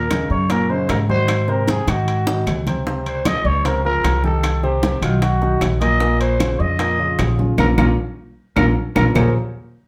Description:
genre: Afro-Cuban jazz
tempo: 152 BPM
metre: 4/4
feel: straight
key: Bb minor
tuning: A4 = 444 Hz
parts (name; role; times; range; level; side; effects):
- growling trumpet; melody; 0.0-9.3 s; F4 to Eb5; -24 LUFS; equal; none
- warm concert grand piano; accompaniment; 0.0-9.3 s; Bb2 to Db5; -25 LUFS; equal; none
- upright bass; bass; 0.0-9.3 s; Bb1 to Ab2; -22 LUFS; equal; none
- bongos; percussion; 0.1-9.2 s; none; -28 LUFS; equal; none
- claves; percussion; 0.1-9.2 s; none; -32 LUFS; equal; none
- congas; percussion; 0.1-9.2 s; none; -29 LUFS; equal; none
- timbales; percussion; 0.1-9.2 s; none; -30 LUFS; equal; none
room: wet studio reverb, RT60 0.7 s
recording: heard from further back in the room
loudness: -18 LUFS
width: mono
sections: 0.0-9.2 A section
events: drum fill 1.9-2.9, 8.0-9.2; band accent 7.6-9.2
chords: 0.0 Ebm7; 1.3 Ab7; 2.9 Dbmaj9; 4.4 Cm; 5.2 B; 6.0 Bbm; 9.2 Bbm9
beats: 0.11 0.50 0.89 | 1.29 1.68 2.08 2.47 | 2.86 3.25 3.65 4.04 | 4.43 4.83 5.22 5.62 | 6.01 6.40 6.79 7.19 | 7.58 7.98 8.37 8.76 | 9.16

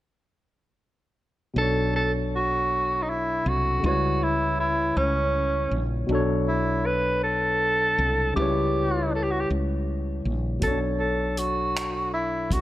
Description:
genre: slow six-eight R&B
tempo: 53 BPM (dotted quarters)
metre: 6/8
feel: straight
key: B minor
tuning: A4 = 441 Hz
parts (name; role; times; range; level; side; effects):
- barky tine electric piano; accompaniment; 1.5-12.6 s; B2 to C#5; -28 LUFS; left 2 dB; wide subtle chorus
- breathy tenor saxophone; melody; 1.6-12.6 s; C#4 to B4; -25 LUFS; right 1 dB; none
- woody fretless electric bass; bass; 1.6-12.6 s; A#1 to C#2; -28 LUFS; equal; none
- cloth-damped thuddy drum kit; drums; 10.6-12.6 s; finger snaps, hi-hat, kick drum; -28 LUFS; equal; none
room: light reverb, small room ambience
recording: none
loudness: -22 LUFS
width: side -15 dB against mid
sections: 1.6-12.6 A section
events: none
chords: 1.6 Bm9; 3.8 C#m7b5; 6.1 Bm9; 8.4 C#m7b5; 10.6 Bm9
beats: | 1.56 2.70 | 3.83 4.96 | 6.09 7.22 | 8.36 9.49 | 10.62 11.75

